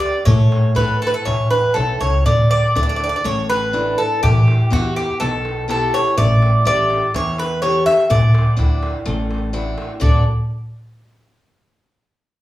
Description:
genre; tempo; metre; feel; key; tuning
greek folk, Greek bouzouki band; 124 BPM; 4/4; straight; D major; A4 = 439 Hz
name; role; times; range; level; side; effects
Greek bouzouki; melody; 0.0-10.2 s; F#4 to E5; -18 LUFS; equal; none
picked acoustic archtop guitar; accompaniment; 0.0-10.2 s; B2 to E5; -25 LUFS; left 2 dB; none
darbuka; percussion; 0.0-10.2 s; none; -19 LUFS; equal; none
upright bass; bass; 0.3-10.2 s; A1 to A2; -21 LUFS; equal; none
room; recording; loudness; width
wet large studio reverb, RT60 0.9 s; band playing live in one room, small room reverb; -14 LUFS; side -15 dB against mid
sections
0.0-10.0 A section; 10.0-11.9 B section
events
speeding up 0.0-11.9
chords
0.3 A; 2.3 Dsus2; 4.2 Em; 6.2 A7; 8.1 Dadd9; 10.0 D

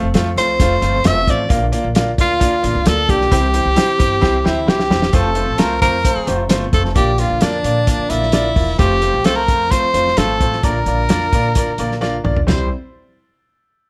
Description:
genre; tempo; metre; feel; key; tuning
uptempo 1960s-style soul; 131 BPM; 4/4; straight; unclear; A4 = 439 Hz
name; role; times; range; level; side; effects
clear baby grand piano; accompaniment; 0.0-12.7 s; G3 to D5; -24 LUFS; equal; none
tonewheel organ; sustained chords; 0.0-12.7 s; D3 to C5; -31 LUFS; equal; none
upright bass; bass; 0.0-12.7 s; E1 to C3; -23 LUFS; equal; none
warm soul drum kit; drums; 0.1-12.6 s; hi-hat, kick drum, snare drum, splash cymbal, toms; -20 LUFS; equal; none
breathy tenor saxophone; melody; 0.4-12.7 s; D4 to E5; -20 LUFS; equal; slapback echo
vibraphone with medium mallets; second line; 0.4-12.7 s; C4 to E6; -33 LUFS; equal; none
room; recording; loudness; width
light reverb, small room reverb; none; -16 LUFS; mono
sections
0.0-5.1 A section; 5.1-12.5 B section; 12.5-13.9 C section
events
drum fill 4.2-5.1, 12.0-12.5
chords
0.0 F; 1.5 Bb; 3.3 C; 5.1 F; 7.0 Bb; 8.8 F; 10.6 Bb; 12.5 C

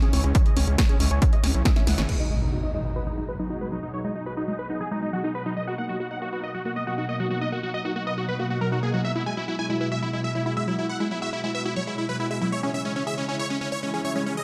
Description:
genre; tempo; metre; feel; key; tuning
uplifting trance; 138 BPM; 4/4; straight; G# minor; A4 = 440 Hz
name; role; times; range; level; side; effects
big supersaw lead; melody; 0.0-14.4 s; C#4 to G#5; -32 LUFS; equal; phaser, sidechain pumping, low-pass filter, dub echo
analog string pad; sustained chords; 0.0-14.4 s; B2 to E4; -34 LUFS; equal; ensemble chorus, sidechain pumping
tight sequenced synth; arpeggios; 0.0-14.4 s; F#3 to G#5; -35 LUFS; equal; chorus, sidechain pumping, dub echo
punchy analog drum machine; drums; 0.0-2.2 s; congas, crash cymbal, hi-hat, snare drum; -31 LUFS; equal; overdrive, sidechain pumping on hats, sidechain pumping on perc, sidechain pumping on cymbals
gritty driven synth bass; bass; 0.1-2.1 s; G#1 to C#2; -25 LUFS; equal; distortion, sidechain pumping
electronic kick drum; drums; 0.3-1.7 s; none; -23 LUFS; equal; overdrive
impact and riser; sound effects; 2.1-3.8, 13.6-14.4 s; none; -33 LUFS; equal; none
room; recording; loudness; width
moderate recital hall reverb, RT60 1.4 s; none; -26 LUFS; mono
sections
0.0-2.1 A section; 2.1-14.4 B section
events
filter sweep on analog synth pad 0.0-2.1; drum fill 1.8-2.1; band accent 2.0; impact 2.1-3.8; filter sweep on supersaw synth 2.1-14.4; filter sweep on synth arpeggio sound 2.1-14.4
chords
0.0 C#m; 2.1 G#m7; 5.6 Bmaj7; 9.0 Eadd9; 12.5 C#m

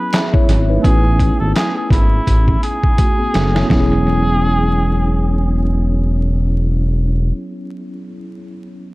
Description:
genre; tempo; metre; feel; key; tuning
hip hop, boom-bap hip-hop; 84 BPM; 4/4; swing 58% on 16ths; E major; A4 = 440 Hz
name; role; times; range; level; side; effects
trumpet with cup mute; melody; 0.0-5.8 s; E4 to B4; -22 LUFS; right 1 dB; analog delay
mellow tine electric piano; accompaniment; 0.0-8.9 s; F#3 to E5; -21 LUFS; equal; medium stereo tremolo, cassette tape, analog delay
boom bap sampler-style drum kit; drums; 0.1-3.9 s; handclaps, hi-hat, kick drum, snare drum; -15 LUFS; equal; vintage 12-bit sampler grit
smooth gliding synth bass; bass; 0.5-7.3 s; E1 to A1; -16 LUFS; equal; none
room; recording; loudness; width
digital ambience; echo-heavy mix, vinyl crackle; -13 LUFS; side -20 dB against mid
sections
0.0-3.7 A section; 3.7-6.6 B section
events
drum fill 2.3-3.7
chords
0.0 E6; 0.8 Amaj7; 3.7 E6

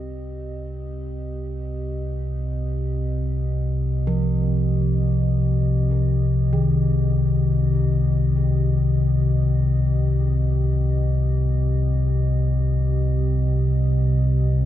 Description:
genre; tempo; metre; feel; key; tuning
dark ambient drone; free time; none; none; C minor; A4 = 435 Hz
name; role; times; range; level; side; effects
dark analog pad; sustained chords; 0.0-14.7 s; C4 to Eb5; -33 LUFS; right 1 dB; chorus
deep rumbling drone; drone; 0.0-14.7 s; C2 to C3; -20 LUFS; left 1 dB; built-in reverb
bronze singing bowl; texture; 0.0-14.7 s; none; barely audible; none; none
gamelan-type bronze metallophone; arpeggios; 4.1-13.9 s; Eb3 to F3; -27 LUFS; left 2 dB; diffuse ambient delay
room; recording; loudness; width
wet cathedral reverb, RT60 4.9 s; in a vast, echoing space; -19 LUFS; side -12 dB against mid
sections
0.0-14.7 A section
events
fade-in on analog synth pad 0.0-14.7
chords
0.0 Cm

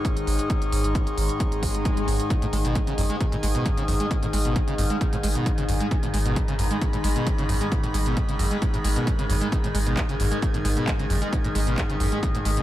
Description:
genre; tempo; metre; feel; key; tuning
driving peak-time techno; 133 BPM; 4/4; straight; G# minor; A4 = 435 Hz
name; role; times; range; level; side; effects
overtone-sweeping drone; drone; 0.0-12.6 s; G#2 to D#3; -30 LUFS; left 1 dB; chorus, built-in reverb, sidechain pumping
electronic kick drum; drums; 0.0-12.3 s; none; -26 LUFS; equal; none
techno drum kit; drums; 0.0-12.6 s; handclaps, hi-hat; -33 LUFS; right 2 dB; sidechain pumping on hats
airy breathy pad; texture; 0.0-12.6 s; D#4 to B5; -31 LUFS; left 2 dB; chorus, sidechain pumping
saturated sub bass; bass; 0.2-12.6 s; G#1; -27 LUFS; equal; sidechain pumping, low-pass filter
swell; sound effects; 1.5-2.3 s; none; -32 LUFS; left 1 dB; none
screaming distorted acid line; riff; 2.3-12.6 s; F#2 to G#3; -28 LUFS; right 1 dB; distortion, lush chorus, sidechain pumping, digital delay
room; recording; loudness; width
light reverb; none; -22 LUFS; side -14 dB against mid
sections
0.0-12.6 A section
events
swell 1.5-2.3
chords
0.0 G#5

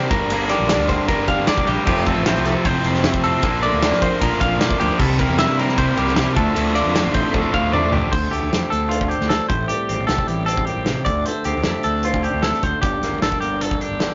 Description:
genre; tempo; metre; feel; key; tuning
math rock and midwest emo; 153 BPM; 4/4; straight; D minor; A4 = 441 Hz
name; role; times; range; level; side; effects
twelve-string electric guitar; accompaniment; 0.0-14.1 s; D2 to G4; -27 LUFS; equal; spring reverb
clean electric guitar; arpeggios; 0.0-14.1 s; F4 to F5; -25 LUFS; equal; none
cranked stack guitar; riff; 0.0-8.1 s; F2 to E4; -25 LUFS; equal; overdrive
fuzz fingered electric bass; bass; 0.1-14.1 s; F1 to D3; -27 LUFS; equal; overdrive
loose indie drum kit; drums; 0.1-14.1 s; crash cymbal, hi-hat, kick drum, ride cymbal, snare drum, toms; -25 LUFS; equal; none
room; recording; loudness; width
moderate studio reverb, RT60 0.6 s; rough rehearsal-room recording, tube saturation, nothing above 7.5 kHz; -19 LUFS; mono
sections
0.0-8.1 A section; 8.1-14.1 B section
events
drum fill 7.3-8.1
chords
0.1 Gm; 1.9 Fmaj7; 3.4 Bbmaj7; 5.0 C7; 6.4 Dm7; 9.5 Am7; 11.1 Dm7; 12.8 Gm

